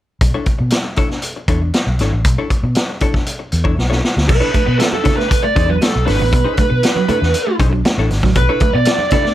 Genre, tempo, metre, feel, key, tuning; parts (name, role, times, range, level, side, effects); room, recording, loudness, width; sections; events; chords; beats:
funk; 118 BPM; 4/4; straight; B dorian; A4 = 439 Hz
vintage hollow-body jazz guitar; accompaniment; 0.2-9.3 s; D4 to C#5; -24 LUFS; left 5 dB
vintage muted fingered electric bass; bass; 0.2-8.9 s; G#1 to B2; -17 LUFS; equal
vintage drum kit; drums; 0.2-9.3 s; crash cymbal, hi-hat, kick drum, snare drum; -17 LUFS; equal
bluesy overdriven lead guitar; melody; 4.3-9.3 s; A4 to D5; -17 LUFS; right 2 dB; distortion
congas; percussion; 4.3-9.2 s; -26 LUFS; right 5 dB
electric guitar at the edge of break-up; riff; 4.4-9.3 s; F#3 to B3; -23 LUFS; right 4 dB
small room ambience; -13 LUFS; side -13 dB against mid
0.2-4.3 A section; 4.3-9.3 B section
drum fill 3.8-4.3
0.2 Bm11
| 0.21 0.72 1.23 1.74 | 2.25 2.77 3.27 3.79 | 4.29 4.80 5.31 5.82 | 6.33 6.84 7.34 7.85 | 8.36 8.87